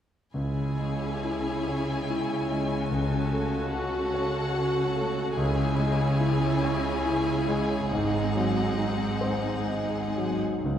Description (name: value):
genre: classical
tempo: 59-74 BPM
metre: 3/4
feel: rubato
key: C# minor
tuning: A4 = 440 Hz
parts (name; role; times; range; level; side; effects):
- clear concert grand piano; melody; 0.3-10.8 s; C#2 to C#5; -28 LUFS; equal; none
- rich chamber violin section; second line; 0.3-10.4 s; G#4 to G#5; -33 LUFS; left 2 dB; none
- rich studio viola section; accompaniment; 0.3-10.4 s; B#3 to F#4; -33 LUFS; equal; none
- warm symphonic cello section; bass; 0.3-10.8 s; C#2 to C#3; -34 LUFS; equal; none
- rich chamber double bass section; bass; 0.4-10.8 s; G#1 to C#2; -35 LUFS; right 4 dB; none
- dark French horn section; sustained chords; 9.7-10.8 s; C#4 to D#4; -32 LUFS; left 4 dB; none
room: wet concert hall reverb, RT60 1.8 s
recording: heard from further back in the room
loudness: -25 LUFS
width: side -9 dB against mid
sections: 0.4-10.6 A section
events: none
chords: 0.4 C#m; 2.9 F#m/C#; 5.4 C#m; 7.9 G#7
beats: | 0.35 1.24 2.09 | 2.91 3.72 4.54 | 5.36 6.19 7.04 | 7.91 8.77 9.67 | 10.64